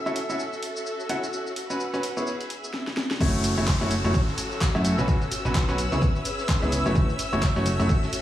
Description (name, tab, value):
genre	piano house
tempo	128 BPM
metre	4/4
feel	swing 59% on 16ths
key	F# minor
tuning	A4 = 440 Hz
part	string machine, violins	sustained chords	0.0-8.2 s	E6	-36 LUFS	equal	ensemble chorus, sidechain pumping
part	warm symphonic string section	texture	0.0-8.2 s	C#4 to F#5	-34 LUFS	left 2 dB	sidechain pumping
part	bright baby grand piano	riff	0.1-7.9 s	A3 to F#5	-28 LUFS	equal	sidechain pumping, dub echo
part	garage drum kit	drums	0.1-8.2 s	crash cymbal, handclaps, hi-hat, shaker, snare drum	-32 LUFS	equal	overdrive, studio reverb
part	plucky analog bass	bass	3.2-7.9 s	F#1 to F#2	-26 LUFS	equal	sidechain pumping
part	dusty soul sampler-style drum kit	drums	3.2-8.2 s	hi-hat, snare drum	-41 LUFS	equal	none
part	electronic kick drum	drums	3.2-8.0 s	none	-25 LUFS	equal	studio reverb
part	downlifter	sound effects	3.2-7.0 s	none	-36 LUFS	left 1 dB	none
room	light reverb, digital ambience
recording	small room reverb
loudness	-22 LUFS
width	side -13 dB against mid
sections	0.0-3.2 A section; 3.2-8.2 B section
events	filter sweep on string machine 0.0-3.2; drum fill 2.7-3.2; drop 3.2-8.2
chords	0.0 F#m7; 2.0 C#m7; 3.2 F#m7; 5.1 Bsus2; 5.8 C#m7; 7.0 F#m7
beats	0.39 0.86 | 1.33 1.80 2.27 2.74 | 3.21 3.67 4.14 4.61 | 5.08 5.55 6.02 6.49 | 6.96 7.42 7.89